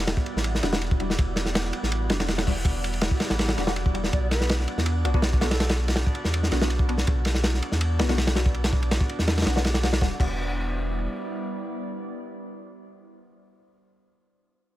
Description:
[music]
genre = drum and bass, jungle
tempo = 163 BPM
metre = 4/4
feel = straight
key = E minor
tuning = A4 = 436 Hz
[part]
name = warbly tape-like pad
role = sustained chords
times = 0.0-13.2 s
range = G3 to D5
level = -34 LUFS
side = right 1 dB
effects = chorus, built-in reverb, vintage 12-bit sampler grit
[part]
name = saturated sub bass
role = bass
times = 0.0-11.1 s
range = E1 to E2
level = -26 LUFS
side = equal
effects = none
[part]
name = crunchy breakbeat drum kit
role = drums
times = 0.0-10.3 s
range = crash cymbal, hi-hat, kick drum, ride cymbal, snare drum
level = -25 LUFS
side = equal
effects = none
[part]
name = wind-like tuned noise texture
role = texture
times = 0.0-10.0 s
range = F#4 to F#5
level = -40 LUFS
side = right 2 dB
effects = built-in reverb
[part]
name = filtered dub chord stab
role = stabs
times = 0.6-13.4 s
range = G3 to F#4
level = -33 LUFS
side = left 2 dB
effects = phaser, lush chorus, dub echo
[part]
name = hollow concert flute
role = melody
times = 4.1-5.8 s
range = A4 to D5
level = -38 LUFS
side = right 1 dB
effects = dub echo
[sound]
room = studio ambience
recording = none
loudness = -22 LUFS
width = side -15 dB against mid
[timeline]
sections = 0.0-10.0 A section; 10.0-13.0 B section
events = drop 0.0-10.0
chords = 0.0 Em7; 4.1 Bm; 10.0 Em7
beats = 0.08 0.45 0.81 | 1.18 1.55 1.92 2.29 | 2.65 3.02 3.39 3.76 | 4.13 4.50 4.86 5.23 | 5.60 5.97 6.33 6.70 | 7.07 7.44 7.81 8.18 | 8.54 8.91 9.28 9.65 | 10.02 10.38 10.75 11.12 | 11.49 11.86 12.22 12.59

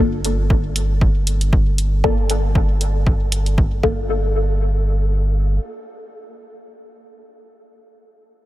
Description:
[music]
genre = dub techno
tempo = 117 BPM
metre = 4/4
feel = swing 55% on 16ths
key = G minor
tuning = A4 = 440 Hz
[part]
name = filtered dub chord stab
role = stabs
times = 0.0-7.8 s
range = Bb3 to A4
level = -25 LUFS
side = left 2 dB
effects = phaser, sidechain pumping, dub echo
[part]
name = soft dub sub bass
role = bass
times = 0.0-5.6 s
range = G1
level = -19 LUFS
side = equal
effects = tube saturation, sidechain pumping
[part]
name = electronic hi-hat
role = drums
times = 0.2-3.6 s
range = none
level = -24 LUFS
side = right 1 dB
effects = none
[part]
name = electronic kick drum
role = drums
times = 0.5-3.9 s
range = none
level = -18 LUFS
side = equal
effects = none
[sound]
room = light reverb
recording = none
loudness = -16 LUFS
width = side -16 dB against mid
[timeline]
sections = 0.0-4.1 A section; 4.1-8.2 B section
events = none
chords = 0.0 Gm9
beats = 0.50 1.01 1.53 | 2.04 2.55 3.06 3.58 | 4.09 4.60 5.12 5.63 | 6.14 6.65 7.17 7.68

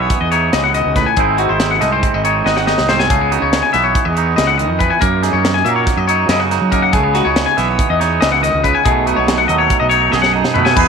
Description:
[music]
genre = math rock and midwest emo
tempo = 281 BPM (eighths)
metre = 9/8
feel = straight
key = unclear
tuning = A4 = 444 Hz
[part]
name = twangy electric guitar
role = accompaniment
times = 0.0-10.9 s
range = E2 to G#4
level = -18 LUFS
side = right 15 dB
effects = none
[part]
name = twangy electric guitar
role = arpeggios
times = 0.0-10.9 s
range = F#4 to G#5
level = -16 LUFS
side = left 10 dB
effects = tape echo
[part]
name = fuzz fingered electric bass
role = bass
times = 0.0-10.9 s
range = G#1 to F#3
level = -20 LUFS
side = equal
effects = overdrive
[part]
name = crisp fusion drum kit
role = drums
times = 0.1-10.9 s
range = crash cymbal, hi-hat, kick drum, snare drum, toms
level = -19 LUFS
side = equal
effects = none
[sound]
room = light reverb, studio ambience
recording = 1960s-style stereo with parts hard left and right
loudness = -12 LUFS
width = side -6 dB against mid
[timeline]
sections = 0.0-10.8 A section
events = drum fill 2.5-3.1, 10.1-10.8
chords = 0.0 C#m9; 1.2 G#7b13; 3.1 C#m11; 5.0 F#6; 6.9 C#m11; 8.9 B13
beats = 0.10 0.32 0.53 0.74 0.96 | 1.17 1.39 1.60 1.81 2.03 2.24 2.46 2.67 2.88 | 3.10 3.31 3.52 3.74 3.95 4.17 4.38 4.59 4.81 | 5.02 5.23 5.45 5.66 5.87 6.09 6.30 6.51 6.73 | 6.94 7.15 7.37 7.58 7.79 8.00 8.22 8.43 8.64 | 8.86 9.07 9.28 9.49 9.71 9.92 10.13 10.35 10.56 | 10.77

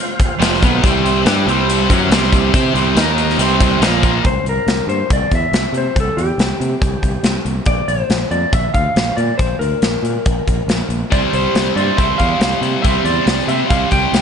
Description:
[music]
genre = classic rock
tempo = 140 BPM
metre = 4/4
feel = straight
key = C mixolydian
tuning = A4 = 441 Hz
[part]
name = tonewheel organ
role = sustained chords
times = 0.0-4.2 s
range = C4 to F5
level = -26 LUFS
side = equal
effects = slow rotary speaker, overdrive, chorus vibrato
[part]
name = big rock drum kit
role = drums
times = 0.2-14.2 s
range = hi-hat, kick drum, snare drum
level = -17 LUFS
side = equal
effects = none
[part]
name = overdriven electric guitar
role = riff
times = 0.4-4.2, 11.1-14.2 s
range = F2 to C5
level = -19 LUFS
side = left 14 dB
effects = none
[part]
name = overdriven electric guitar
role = riff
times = 0.4-4.2, 11.1-14.2 s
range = F2 to C5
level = -19 LUFS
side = right 14 dB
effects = none
[part]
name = growling fingered electric bass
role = bass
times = 0.4-14.2 s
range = F1 to C3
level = -20 LUFS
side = equal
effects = overdrive
[part]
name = electric slide guitar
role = melody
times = 4.3-14.2 s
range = G4 to G5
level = -20 LUFS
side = left 2 dB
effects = none
[sound]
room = light reverb, small room ambience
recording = nothing above 10.3 kHz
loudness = -13 LUFS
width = side -7 dB against mid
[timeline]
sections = 0.0-4.2 A section; 4.2-14.2 B section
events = none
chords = 0.0 F5; 0.8 C; 3.0 Eb5; 3.4 C; 3.8 Bb5; 4.2 C5; 7.7 N.C.; 11.1 C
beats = 0.40 | 0.83 1.26 1.68 2.11 | 2.54 2.96 3.39 3.81 | 4.24 4.67 5.10 5.53 | 5.95 6.38 6.81 7.24 | 7.67 8.10 8.53 8.96 | 9.39 9.82 10.25 10.68 | 11.11 11.54 11.98 12.41 | 12.84 13.27 13.71 14.14

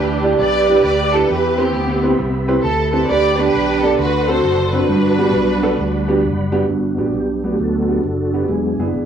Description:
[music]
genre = uptempo gospel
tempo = 133 BPM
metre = 4/4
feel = swing 65% on 8ths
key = G major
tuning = A4 = 440 Hz
[part]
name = warm studio string section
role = melody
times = 0.0-6.2 s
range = B3 to D5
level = -17 LUFS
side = right 1 dB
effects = cassette tape, analog delay
[part]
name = warm upright piano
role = accompaniment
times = 0.0-9.1 s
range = G2 to D5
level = -19 LUFS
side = right 1 dB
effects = cassette tape
[part]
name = mellow tonewheel organ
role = sustained chords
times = 0.0-9.1 s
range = F#3 to C6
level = -22 LUFS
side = right 2 dB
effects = slow rotary speaker, chorus vibrato, cassette tape
[part]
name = fretless electric bass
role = bass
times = 0.0-9.1 s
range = E1 to E2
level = -22 LUFS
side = equal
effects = none
[sound]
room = light reverb, studio ambience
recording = home recording on cassette, small room ambience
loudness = -14 LUFS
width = side -8 dB against mid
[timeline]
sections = 0.0-6.7 A section; 6.7-9.1 B section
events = tonewheel organ solo 6.7-9.1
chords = 0.0 Em7; 1.3 Cmaj7; 3.1 G/D; 4.0 D7; 4.9 Gmaj7; 8.5 E7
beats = 0.38 0.83 | 1.28 1.73 2.18 2.63 | 3.08 3.53 3.98 4.43 | 4.88 5.33 5.79 6.24 | 6.69 7.14 7.59 8.04 | 8.49 8.94

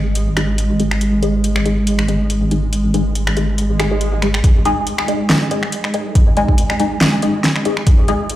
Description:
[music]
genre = deep dubstep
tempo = 140 BPM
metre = 4/4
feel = swing 55% on 16ths, half-time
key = G# minor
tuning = A4 = 436 Hz
[part]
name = granular cloud pad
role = sustained chords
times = 0.0-8.4 s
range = G#3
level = -22 LUFS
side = right 1 dB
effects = built-in reverb
[part]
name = filtered dub chord stab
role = stabs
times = 0.0-8.2 s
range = G#3 to G#4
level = -20 LUFS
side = left 2 dB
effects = phaser, lush chorus, dub echo
[part]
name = deep soft wobble bass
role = bass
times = 0.0-8.4 s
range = G#1 to B1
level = -20 LUFS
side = equal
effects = chorus, high-pass filter
[part]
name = deep house drum kit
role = drums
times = 0.2-8.4 s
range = finger snaps, hi-hat, snare drum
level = -19 LUFS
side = equal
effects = overdrive, small room ambience
[part]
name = swell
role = sound effects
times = 3.7-4.4 s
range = none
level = -26 LUFS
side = right 1 dB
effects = none
[part]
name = electronic kick drum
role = drums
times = 4.4-8.0 s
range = none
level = -12 LUFS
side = equal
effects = overdrive, small room ambience
[sound]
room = light reverb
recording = played on a big sound system in a bare room, large studio reverb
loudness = -14 LUFS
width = side -14 dB against mid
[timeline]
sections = 0.0-4.4 A section; 4.4-8.4 B section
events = swell 3.7-4.4; build-up 4.4-8.4; filter sweep on ambient pad 4.4-8.4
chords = 0.0 G#5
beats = 0.15 0.58 | 1.01 1.44 1.87 2.30 | 2.73 3.15 3.58 4.01 | 4.44 4.87 5.30 5.73 | 6.16 6.58 7.01 7.44 | 7.87 8.30

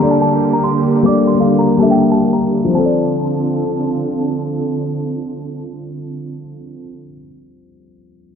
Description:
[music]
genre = hip hop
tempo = 142 BPM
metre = 4/4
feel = half-time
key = D minor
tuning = A4 = 438 Hz
[part]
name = small celesta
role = melody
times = 0.0-4.0 s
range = G5 to D6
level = -22 LUFS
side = right 2 dB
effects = low-pass filter, ping-pong delay
[part]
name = dark concert grand piano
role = accompaniment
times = 0.0-8.4 s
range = F3 to F5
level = -15 LUFS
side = left 3 dB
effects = low-pass filter
[part]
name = rich studio string section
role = sustained chords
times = 0.0-6.9 s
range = D3 to A4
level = -19 LUFS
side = right 4 dB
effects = low-pass filter
[sound]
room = moderate scoring stage reverb, RT60 1.6 s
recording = dark, warm production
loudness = -13 LUFS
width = side -7 dB against mid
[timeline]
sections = 0.0-2.7 A section; 2.7-6.1 B section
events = filter sweep 0.0-2.7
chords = 0.0 Gmadd9; 2.7 Dm7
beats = 0.21 0.64 | 1.06 1.48 1.90 2.33 | 2.75 3.17 3.59 4.02 | 4.44 4.86 5.29 5.71

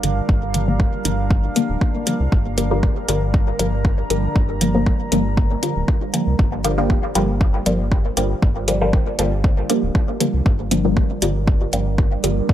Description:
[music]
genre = dub techno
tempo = 118 BPM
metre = 4/4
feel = swing 53% on 16ths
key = G minor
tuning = A4 = 443 Hz
[part]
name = deep dark ambient pad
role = sustained chords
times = 0.0-12.5 s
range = G3 to Bb5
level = -28 LUFS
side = right 2 dB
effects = chorus, built-in reverb, sidechain pumping
[part]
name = filtered dub chord stab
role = stabs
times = 0.0-12.4 s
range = D3 to Bb3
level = -22 LUFS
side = left 1 dB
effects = phaser, cassette tape, sidechain pumping, dub echo
[part]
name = round analog bass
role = bass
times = 0.0-12.5 s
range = D1 to C2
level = -22 LUFS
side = equal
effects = sidechain pumping
[part]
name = electronic hi-hat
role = drums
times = 0.0-12.3 s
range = none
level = -24 LUFS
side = equal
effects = overdrive
[part]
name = electronic kick drum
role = drums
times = 0.3-12.5 s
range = none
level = -18 LUFS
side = equal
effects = overdrive
[sound]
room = light reverb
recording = none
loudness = -16 LUFS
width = side -11 dB against mid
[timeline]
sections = 0.0-6.4 A section; 6.4-12.5 A section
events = filter sweep on synth stab 6.4-12.5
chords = 0.0 Gm7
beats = | 0.29 0.80 1.31 1.81 | 2.32 2.83 3.34 3.85 | 4.36 4.87 5.37 5.88 | 6.39 6.90 7.41 7.92 | 8.42 8.93 9.44 9.95 | 10.46 10.97 11.47 11.98 | 12.49

